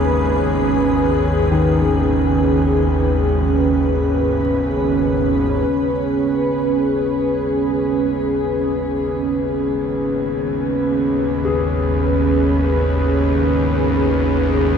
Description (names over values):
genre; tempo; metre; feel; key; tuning
dark ambient drone; free time; none; none; unclear; A4 = 440 Hz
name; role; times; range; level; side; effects
dark analog pad; sustained chords; 0.0-14.8 s; Db4 to Cb5; -17 LUFS; right 1 dB; chorus, shimmer reverb
dark grand piano; arpeggios; 0.0-14.8 s; Ab2 to Ab4; -27 LUFS; left 4 dB; ping-pong delay, shimmer reverb
bowed-like drone; drone; 0.0-14.8 s; Ab1 to Eb2; -20 LUFS; equal; built-in reverb
icy glass pad; texture; 0.0-5.7 s; Cb5; -42 LUFS; right 3 dB; chorus, built-in reverb, shimmer reverb
room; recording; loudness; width
wet cathedral reverb, RT60 5.4 s; dark, warm production; -16 LUFS; side -7 dB against mid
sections
0.0-5.7 A section; 5.7-14.8 B section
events
filter sweep on synth drone 0.0-5.7; fade-in on synth drone 5.7-14.8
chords
0.0 Abm